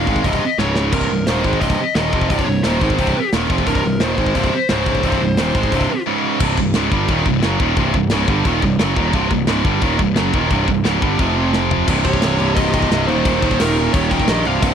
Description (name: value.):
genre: heavy metal.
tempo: 175 BPM.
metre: 4/4.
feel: straight.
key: C phrygian.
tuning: A4 = 441 Hz.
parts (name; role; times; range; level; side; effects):
high-gain lead guitar; melody; 0.0-6.0, 12.1-14.7 s; Bb4 to G5; -23 LUFS; left 1 dB; distortion, tape echo.
heavy high-gain guitar; riff; 0.0-14.7 s; C2 to Ab3; -21 LUFS; left 14 dB; distortion.
tight distorted guitar; riff; 0.0-14.7 s; C2 to Ab3; -20 LUFS; right 12 dB; distortion.
fuzz picked electric bass; bass; 0.0-14.7 s; C1 to Bb1; -21 LUFS; left 1 dB; overdrive.
tight metal drum kit; drums; 0.1-14.7 s; crash cymbal, hi-hat, kick drum, snare drum, toms; -21 LUFS; equal; none.
high-gain lead guitar; second line; 12.0-14.7 s; Eb4 to C5; -27 LUFS; right 2 dB; distortion.
room: small room ambience.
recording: dry, close 1970s-style studio recording.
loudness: -14 LUFS.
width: side -8 dB against mid.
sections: 0.0-6.4 A section; 6.4-11.9 B section; 11.9-14.7 C section.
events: drum fill 0.6-0.9, 11.5-11.9.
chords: 0.0 Cm; 0.6 Db5; 0.9 Cm; 4.7 Db5; 5.0 Cm; 6.1 Db5; 6.4 Cm; 11.2 F5; 11.9 Cm; 13.1 Eb5.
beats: 0.25 0.59 | 0.93 1.27 1.61 1.96 | 2.30 2.64 2.98 3.32 | 3.67 4.01 4.35 4.69 | 5.04 5.38 5.72 6.06 | 6.40 6.75 7.09 7.43 | 7.77 8.12 8.46 8.80 | 9.14 9.48 9.83 10.17 | 10.51 10.85 11.20 11.54 | 11.88 12.22 12.57 12.91 | 13.25 13.59 13.94 14.28 | 14.62.